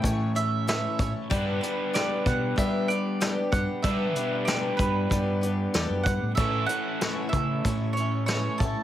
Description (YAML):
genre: folk rock and heartland rock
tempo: 94 BPM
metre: 4/4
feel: straight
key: unclear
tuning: A4 = 440 Hz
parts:
  - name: mandolin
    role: melody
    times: 0.0-8.8 s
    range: B4 to A5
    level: -31 LUFS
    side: right 4 dB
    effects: none
  - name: picked twelve-string acoustic guitar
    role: accompaniment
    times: 0.0-8.8 s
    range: A2 to C#5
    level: -31 LUFS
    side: left 3 dB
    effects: none
  - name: crunchy overdriven guitar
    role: riff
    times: 0.0-8.8 s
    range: A2 to B4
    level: -31 LUFS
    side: right 1 dB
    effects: none
  - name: hollow-body short-scale fingered electric bass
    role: bass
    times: 0.0-8.7 s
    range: E2 to G3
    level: -29 LUFS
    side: equal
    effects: none
  - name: soft brush drum kit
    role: drums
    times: 0.0-8.8 s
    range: hi-hat, kick drum, snare drum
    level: -29 LUFS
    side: equal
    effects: none
room: small room ambience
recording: none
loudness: -24 LUFS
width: side -12 dB against mid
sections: 0.0-8.8 A section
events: none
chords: 0.0 A; 1.3 G; 6.4 A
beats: 0.03 0.66 | 1.30 1.93 2.57 3.20 | 3.84 4.47 5.11 5.74 | 6.38 7.01 7.65 8.28